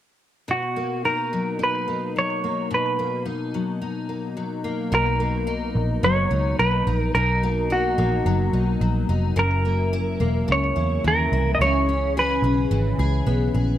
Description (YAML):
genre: indie pop, bedroom pop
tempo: 108 BPM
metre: 4/4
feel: swing 60% on 16ths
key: unclear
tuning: A4 = 440 Hz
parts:
  - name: semi-hollow electric guitar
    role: melody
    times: 0.5-13.2 s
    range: F#4 to D#5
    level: -23 LUFS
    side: right 2 dB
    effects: lush chorus, slapback echo
  - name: picked steel-string acoustic guitar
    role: accompaniment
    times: 0.5-13.8 s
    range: F#2 to G#4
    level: -25 LUFS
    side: left 3 dB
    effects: analog chorus, warbly pitch drift
  - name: vintage muted picked electric bass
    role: bass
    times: 4.9-13.8 s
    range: E1 to E2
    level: -23 LUFS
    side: right 1 dB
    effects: none
room: light reverb, small room ambience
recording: none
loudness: -20 LUFS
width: side -12 dB against mid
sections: 0.5-4.9 A section; 4.9-13.8 B section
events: none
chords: 0.5 Bmaj7; 9.4 F#7; 11.6 C#m7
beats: | 0.47 1.03 1.59 2.14 | 2.70 3.26 3.81 4.37 | 4.92 5.48 6.04 6.59 | 7.15 7.70 8.26 8.81 | 9.37 9.93 10.48 11.04 | 11.59 12.15 12.71 13.26